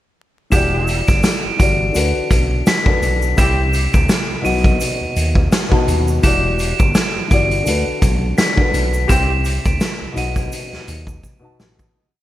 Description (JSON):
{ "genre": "hip hop, boom-bap hip-hop", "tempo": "84 BPM", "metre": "4/4", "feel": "swing 56% on 16ths", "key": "unclear", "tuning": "A4 = 442 Hz", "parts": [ { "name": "glockenspiel with rubber mallets", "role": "melody", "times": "0.5-11.4 s", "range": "B6 to E7", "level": "-22 LUFS", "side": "right 1 dB", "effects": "digital delay" }, { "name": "dark baby grand piano", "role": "accompaniment", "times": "0.5-12.0 s", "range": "B2 to A5", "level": "-22 LUFS", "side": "left 3 dB", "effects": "cassette tape" }, { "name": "warm horn section", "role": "stabs", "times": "0.5-9.3 s", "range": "C4 to G4", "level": "-27 LUFS", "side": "right 2 dB", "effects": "digital delay" }, { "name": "smooth gliding synth bass", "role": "bass", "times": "0.5-11.9 s", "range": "E1 to D#2", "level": "-20 LUFS", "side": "equal", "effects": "none" }, { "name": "raw garage drum kit", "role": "drums", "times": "0.5-11.9 s", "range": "hi-hat, kick drum, snare drum", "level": "-17 LUFS", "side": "equal", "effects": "gated reverb" }, { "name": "egg shaker", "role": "percussion", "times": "0.5-11.9 s", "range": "none", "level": "-36 LUFS", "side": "right 6 dB", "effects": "none" } ], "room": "light reverb", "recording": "bright 1980s-style digital production, vinyl crackle", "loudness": "-14 LUFS", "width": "side -14 dB against mid", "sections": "0.5-11.9 hook", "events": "fade-out 9.1-11.9; drum fill 11.2-11.9", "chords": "0.5 Em7; 1.9 Bm7; 3.4 C; 4.4 B; 6.2 Em7; 7.7 Bm7; 9.1 C; 10.2 B" }